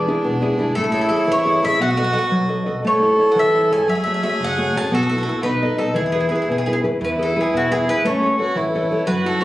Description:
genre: italian folk, Italian serenade.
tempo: 116 BPM (dotted quarters).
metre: 6/8.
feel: rubato.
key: E major.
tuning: A4 = 439 Hz.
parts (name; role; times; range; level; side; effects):
mandolin; melody; 0.0-9.4 s; F#4 to A5; -22 LUFS; left 1 dB; none.
warm violin; second line; 0.0-9.4 s; C#4 to A4; -21 LUFS; right 1 dB; none.
nylon-string guitar; accompaniment; 0.0-9.4 s; B2 to D#5; -21 LUFS; left 1 dB; none.
upright bass; bass; 0.0-9.4 s; E1 to E2; -30 LUFS; equal; none.
room: moderate studio ambience, RT60 0.5 s.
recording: recorded on a phone in the room, club reverb, compression.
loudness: -16 LUFS.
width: side -16 dB against mid.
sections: 0.0-7.0 A section; 7.0-9.4 B section.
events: none.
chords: 0.0 E7; 0.8 Amaj7; 1.8 B7; 2.9 Amaj7; 3.9 F#m; 4.9 B7sus4; 5.4 B7; 6.0 E; 8.1 Aadd9.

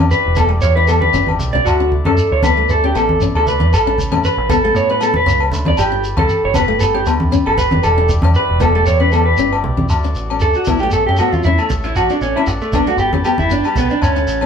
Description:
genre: highlife guitar band.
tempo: 116 BPM.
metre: 4/4.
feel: swing 53% on 16ths.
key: D major.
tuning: A4 = 439 Hz.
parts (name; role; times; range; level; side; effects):
fingerpicked steel-string acoustic guitar; accompaniment; 0.0-14.5 s; A3 to E4; -22 LUFS; left 8 dB; none.
combo organ; sustained chords; 0.0-14.5 s; C#4 to A5; -26 LUFS; left 2 dB; spring reverb.
deep dub picked electric bass; bass; 0.0-14.5 s; E1 to A2; -18 LUFS; equal; none.
electric guitar through a small old amp; arpeggios; 0.1-14.5 s; G3 to D5; -16 LUFS; right 2 dB; none.
shekere; percussion; 0.1-14.4 s; none; -23 LUFS; right 1 dB; none.
agogo bells; percussion; 0.4-14.5 s; none; -23 LUFS; left 6 dB; none.
congas; percussion; 0.4-13.9 s; none; -20 LUFS; right 1 dB; none.
room: moderate studio reverb, RT60 0.5 s.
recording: band playing live in one room.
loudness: -12 LUFS.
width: side -7 dB against mid.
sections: 0.0-9.9 A section; 9.9-14.5 B section.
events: drum fill 1.1-1.7; clean electric guitar solo 9.9-14.5.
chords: 0.0 Em7; 1.7 Dsus2; 3.7 Aadd9; 5.8 Gadd9; 7.8 Em7; 9.9 D; 10.9 A; 12.0 D/A; 13.0 Gadd9.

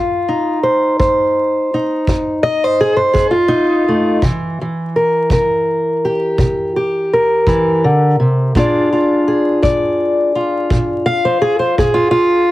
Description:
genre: acoustic country blues, solo or duo.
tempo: 56 BPM (dotted quarters).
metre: 12/8.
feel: straight.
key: unclear.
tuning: A4 = 440 Hz.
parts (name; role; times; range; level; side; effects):
fingerpicked steel-string acoustic guitar; melody; 0.0-12.5 s; F2 to F5; -12 LUFS; equal; none.
kick drum; drums; 1.0-12.0 s; none; -20 LUFS; right 1 dB; none.
room: moderate booth ambience, RT60 0.2 s.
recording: heavily compressed radio sound, vinyl crackle.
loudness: -12 LUFS.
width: side -16 dB against mid.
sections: 0.0-12.5 A section.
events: none.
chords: 0.0 F7(no3); 4.2 C7; 8.6 Bb7.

